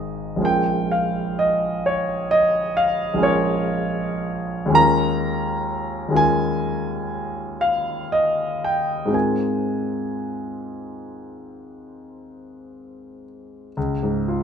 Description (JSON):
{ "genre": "classical, impressionist solo piano", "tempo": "38-44 BPM (dotted quarters)", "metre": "9/8", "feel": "rubato", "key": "Ab major", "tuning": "A4 = 440 Hz", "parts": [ { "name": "clear grand piano", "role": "solo", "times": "0.0-14.4 s", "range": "Ab1 to Bb5", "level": "-19 LUFS", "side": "equal", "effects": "none" } ], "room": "moderate large studio reverb, RT60 1.3 s", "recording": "minimal, uncompressed stereo recording", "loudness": "-19 LUFS", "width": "side -7 dB against mid", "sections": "0.0-13.8 A section", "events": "none", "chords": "0.4 Bbm7; 4.8 Eb9sus4; 9.1 Ab69; 13.8 Db" }